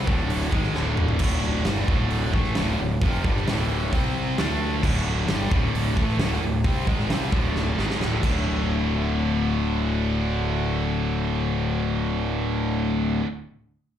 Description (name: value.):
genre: hard rock.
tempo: 132 BPM.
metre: 4/4.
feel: straight.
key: unclear.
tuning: A4 = 440 Hz.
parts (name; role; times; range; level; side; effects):
heavy high-gain guitar; riff; 0.0-13.3 s; D2 to D4; -31 LUFS; right 11 dB; distortion, slapback echo.
overdriven electric guitar; riff; 0.0-13.2 s; D2 to D4; -29 LUFS; left 8 dB; none.
tight distorted guitar; riff; 0.0-13.2 s; D2 to D4; -31 LUFS; right 1 dB; distortion, slapback echo.
fuzz fingered electric bass; bass; 0.0-13.2 s; D1 to D2; -26 LUFS; equal; overdrive.
huge arena drum kit; drums; 0.1-8.3 s; crash cymbal, hi-hat, kick drum, snare drum, toms; -25 LUFS; equal; none.
room: light reverb.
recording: live gig heard through the venue's PA, club reverb.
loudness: -21 LUFS.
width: side -10 dB against mid.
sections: 0.0-1.2 A section; 1.2-8.5 A section; 8.5-12.1 B section.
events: drum fill 0.8-1.2, 7.6-8.5.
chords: 0.0 D5; 3.9 C5; 4.4 D5.